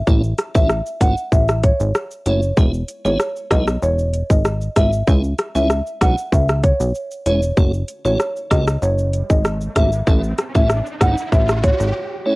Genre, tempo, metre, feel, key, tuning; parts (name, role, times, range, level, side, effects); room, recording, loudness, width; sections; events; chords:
dancehall; 96 BPM; 4/4; straight; A4 = 441 Hz
plucky analog bass; bass; 0.0-11.9 s; E1 to C#2; -19 LUFS; equal
tonewheel organ; accompaniment; 0.1-12.4 s; G#3 to F#4; -24 LUFS; right 1 dB; overdrive, fast rotary speaker, sidechain pumping, cassette tape
island pop drum kit; drums; 0.1-11.9 s; hi-hat, kick drum, rim click, shaker; -16 LUFS; equal; overdrive, cassette tape
marimba with medium mallets; melody; 0.6-12.4 s; C#5 to F#5; -22 LUFS; equal
riser; sound effects; 9.0-11.9 s; -31 LUFS; right 1 dB
light reverb; home recording on cassette; -15 LUFS; side -23 dB against mid
0.0-12.4 A section
riser 9.0-12.4; break 11.9-12.4
0.1 A; 2.6 E; 5.1 C#m; 7.6 F#m; 10.1 A